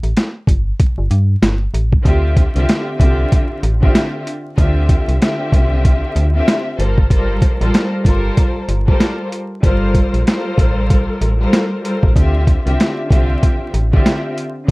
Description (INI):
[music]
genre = hip hop, boom-bap hip-hop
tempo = 95 BPM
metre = 4/4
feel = swing 60% on 16ths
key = D minor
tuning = A4 = 440 Hz
[part]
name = metallic FM bass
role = bass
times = 0.0-14.7 s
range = G1 to G2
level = -16 LUFS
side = equal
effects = none
[part]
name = boom bap sampler-style drum kit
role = drums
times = 0.0-14.7 s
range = hi-hat, kick drum, snare drum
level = -14 LUFS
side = equal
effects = none
[part]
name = rich studio string section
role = accompaniment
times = 2.0-14.7 s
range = D3 to E5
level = -20 LUFS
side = left 1 dB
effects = high-pass filter, low-pass filter
[sound]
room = light reverb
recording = dark, warm production, vinyl crackle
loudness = -13 LUFS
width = side -24 dB against mid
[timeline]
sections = 0.0-2.1 A section; 2.1-14.7 A section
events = break 0.0-2.1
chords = 0.0 Gsus2; 2.1 Dm11; 6.8 Gm11; 12.2 Dm11